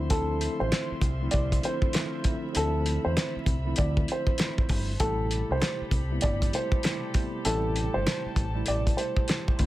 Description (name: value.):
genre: hip hop, boom-bap hip-hop.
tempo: 98 BPM.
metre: 4/4.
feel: swing 62% on 16ths.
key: A minor.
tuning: A4 = 439 Hz.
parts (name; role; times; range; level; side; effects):
dark upright piano; melody; 0.0-9.7 s; A4 to D5; -32 LUFS; right 1 dB; high-pass filter, low-pass filter, digital delay.
mellow tine electric piano; accompaniment; 0.0-9.7 s; B2 to E4; -34 LUFS; equal; medium stereo tremolo, cassette tape, high-pass filter, low-pass filter.
clear studio string section; sustained chords; 0.0-9.7 s; F3 to C6; -41 LUFS; left 1 dB; high-pass filter, low-pass filter.
deep dub fingered electric bass; bass; 0.0-9.7 s; G1 to E2; -29 LUFS; equal; none.
cloth-damped thuddy drum kit; drums; 0.1-9.7 s; hi-hat, kick drum, snare drum; -27 LUFS; equal; vintage 12-bit sampler grit.
finger snaps; percussion; 0.7-9.5 s; none; -40 LUFS; right 4 dB; none.
room: light reverb.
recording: vinyl crackle.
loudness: -25 LUFS.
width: side -16 dB against mid.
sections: 0.0-9.7 A section.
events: none.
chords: 0.0 Dm9; 5.0 Am9.